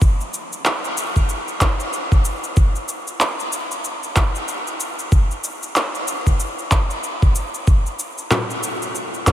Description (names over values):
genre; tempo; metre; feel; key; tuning
downtempo; 94 BPM; 4/4; swing 59% on 16ths; none; none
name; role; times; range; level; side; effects
electronic kick drum; drums; 0.0-9.3 s; none; -15 LUFS; equal; none
electronic shaker and handclaps; drums; 0.0-9.3 s; none; -22 LUFS; equal; overdrive
frame drum; percussion; 8.3-9.3 s; none; -23 LUFS; left 2 dB; none
room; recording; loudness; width
moderate huge ambient reverb, RT60 7.7 s; dreamy mix soaked in reverb; -18 LUFS; side -12 dB against mid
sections
0.0-9.3 A section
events
none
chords
none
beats
| 0.01 0.65 1.29 1.93 | 2.57 3.21 3.84 4.48 | 5.12 5.76 6.40 7.04 | 7.67 8.31 8.95